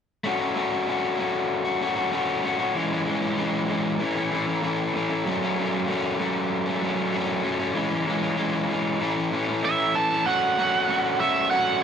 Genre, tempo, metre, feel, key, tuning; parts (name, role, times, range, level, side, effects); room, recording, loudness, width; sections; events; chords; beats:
rock; 96 BPM; 4/4; straight; A4 = 440 Hz
overdriven semi-hollow guitar; riff; 0.2-11.8 s; E3 to F#4; -23 LUFS; left 1 dB
biting lead guitar; melody; 9.6-11.8 s; E5 to A5; -22 LUFS; right 5 dB; overdrive
twangy electric guitar; riff; 10.3-11.8 s; F#2 to C#4; -36 LUFS; right 14 dB
moderate small room ambience, RT60 0.5 s; -22 LUFS; side -7 dB against mid
0.2-10.3 A section; 10.3-11.8 B section
0.2 F#m; 2.8 C#m; 4.0 A; 5.3 F#m; 7.8 C#m; 9.0 A; 10.3 F#m
| 0.24 0.87 1.50 2.13 | 2.76 3.38 4.01 4.64 | 5.26 5.89 6.52 7.14 | 7.77 8.39 9.02 9.64 | 10.27 10.89 11.52